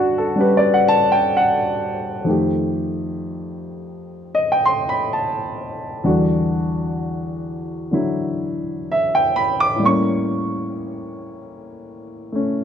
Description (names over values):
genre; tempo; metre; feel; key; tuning
solo jazz; 64 BPM; 4/4; swing 66% on 8ths; unclear; A4 = 440 Hz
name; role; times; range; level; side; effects
dark baby grand piano; solo; 0.0-12.6 s; E2 to D6; -18 LUFS; equal; none
room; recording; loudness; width
moderate large studio reverb, RT60 1.2 s; dark, warm production; -17 LUFS; side -8 dB against mid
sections
0.0-12.6 A section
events
grand piano solo 0.0-12.6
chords
0.0 Gmaj7; 2.3 F9; 6.0 Em9; 9.8 A7b9